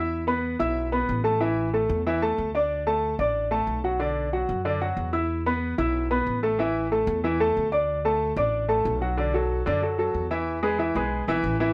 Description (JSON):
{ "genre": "latin, salsa", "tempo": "185 BPM", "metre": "4/4", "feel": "straight", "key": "unclear", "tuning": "A4 = 440 Hz", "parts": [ { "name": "clear grand piano", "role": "accompaniment", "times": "0.0-11.7 s", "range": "D3 to E6", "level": "-26 LUFS", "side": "equal", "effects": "none" }, { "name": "upright bass", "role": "bass", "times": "0.0-11.7 s", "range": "A1 to F#2", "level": "-33 LUFS", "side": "equal", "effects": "none" } ], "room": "moderate studio reverb, RT60 0.6 s", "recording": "none", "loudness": "-25 LUFS", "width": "mono", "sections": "0.0-9.2 A section; 9.2-11.7 B section", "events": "none", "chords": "0.1 E5; 1.4 A5; 2.7 D; 4.0 Bm; 5.3 E5; 6.6 A5; 7.9 D; 9.2 Bm7; 10.5 E", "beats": "| 0.11 0.44 0.76 1.08 | 1.41 1.73 2.06 2.38 | 2.70 3.03 3.35 3.67 | 4.00 4.32 4.65 4.97 | 5.29 5.62 5.94 6.26 | 6.59 6.91 7.24 7.56 | 7.88 8.21 8.53 8.85 | 9.18 9.50 9.82 10.15 | 10.47 10.79 11.12 11.44" }